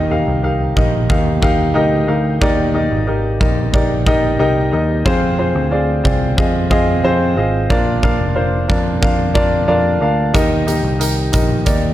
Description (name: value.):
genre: piano-driven pop.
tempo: 91 BPM.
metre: 4/4.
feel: straight.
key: Eb major.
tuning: A4 = 440 Hz.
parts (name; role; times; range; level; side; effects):
clear upright piano; accompaniment; 0.0-11.9 s; Bb2 to F5; -16 LUFS; left 1 dB; none.
overdriven picked electric bass; bass; 0.0-11.9 s; F1 to F2; -19 LUFS; equal; none.
huge arena drum kit; drums; 0.8-11.8 s; hi-hat, kick drum; -19 LUFS; equal; none.
room: light reverb, small room ambience.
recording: none.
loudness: -13 LUFS.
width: side -13 dB against mid.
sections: 0.0-11.9 A section.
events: none.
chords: 0.0 Eb; 5.1 Fm; 7.7 Bb; 10.3 Eb.